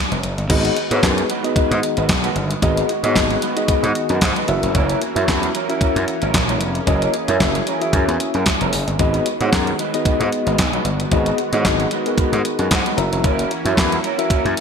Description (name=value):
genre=early-eighties boogie funk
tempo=113 BPM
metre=4/4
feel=swing 56% on 16ths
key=G# minor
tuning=A4 = 441 Hz
part: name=gritty slap bass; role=bass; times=0.1-14.5 s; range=E#1 to G#2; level=-22 LUFS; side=equal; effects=overdrive
part: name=crisp 8-bit digital drum machine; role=drums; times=0.1-14.6 s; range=crash cymbal, handclaps, hi-hat, kick drum, snare drum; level=-20 LUFS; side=equal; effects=gated reverb
part: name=mellow tine electric piano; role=accompaniment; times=0.5-14.6 s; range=B3 to A#5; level=-21 LUFS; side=left 2 dB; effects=medium stereo tremolo
part: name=warm analog pad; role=sustained chords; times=0.5-14.6 s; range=D#3 to G#4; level=-28 LUFS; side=equal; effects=chorus
part: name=electric guitar through a small old amp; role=riff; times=0.5-14.6 s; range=F#3 to C#5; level=-26 LUFS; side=right 6 dB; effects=analog chorus
room=moderate plate reverb, RT60 2.8 s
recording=bright 1980s-style digital production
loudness=-16 LUFS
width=side -6 dB against mid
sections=0.5-14.6 A section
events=tine electric piano fill 12.4-13.2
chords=0.5 G#m7; 4.5 F#7; 9.0 G#m7; 13.0 F#7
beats=| 0.50 1.03 1.56 2.09 | 2.62 3.15 3.69 4.22 | 4.75 5.28 5.81 6.34 | 6.87 7.40 7.93 8.46 | 8.99 9.53 10.06 10.59 | 11.12 11.65 12.18 12.71 | 13.24 13.77 14.30